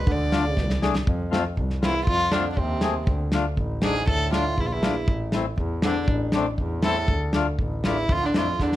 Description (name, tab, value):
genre	klezmer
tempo	120 BPM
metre	2/4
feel	straight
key	D minor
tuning	A4 = 440 Hz
part	warm violin	melody	0.0-8.8 s	C4 to D5	-27 LUFS	equal	plate reverb
part	bright trombone	second line	0.0-8.8 s	E2 to D3	-31 LUFS	right 4 dB	none
part	rich double bass	bass	0.1-8.8 s	A1 to F2	-27 LUFS	equal	none
part	warm soul drum kit	drums	0.1-8.8 s	kick drum, snare drum	-24 LUFS	equal	none
part	accordion	accompaniment	0.3-8.5 s	A3 to G#4	-27 LUFS	left 5 dB	none
room	moderate studio reverb, RT60 0.7 s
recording	none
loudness	-21 LUFS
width	side -14 dB against mid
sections	0.0-1.1 A section; 1.1-8.8 B section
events	drum fill 0.6-1.1, 8.6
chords	0.1 Dm; 1.1 F; 3.1 Dm; 5.1 Am; 7.1 Dm